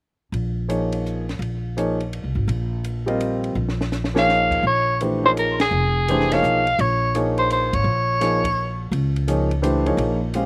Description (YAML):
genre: modal jazz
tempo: 168 BPM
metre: 3/4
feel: swing 64% on 8ths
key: Bb dorian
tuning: A4 = 439 Hz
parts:
  - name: upright bass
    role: bass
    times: 0.3-10.5 s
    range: F1 to Db2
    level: -26 LUFS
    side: equal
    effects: none
  - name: compact cocktail drum kit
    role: drums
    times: 0.3-10.4 s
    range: crash cymbal, hi-hat, kick drum, ride cymbal, snare drum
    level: -35 LUFS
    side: equal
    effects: none
  - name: warm grand piano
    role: accompaniment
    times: 0.7-10.5 s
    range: E3 to F5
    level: -25 LUFS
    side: equal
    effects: none
  - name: growling soprano saxophone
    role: melody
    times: 4.2-8.8 s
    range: Ab4 to F5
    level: -22 LUFS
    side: equal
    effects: none
room: little or no reverb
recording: recorded outdoors, with no room sound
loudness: -21 LUFS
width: mono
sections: 0.3-4.6 A section; 4.6-10.5 B section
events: drum fill 3.6-4.3; band accent 5.5, 7.7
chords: 0.3 Bbm9; 4.6 Bbm7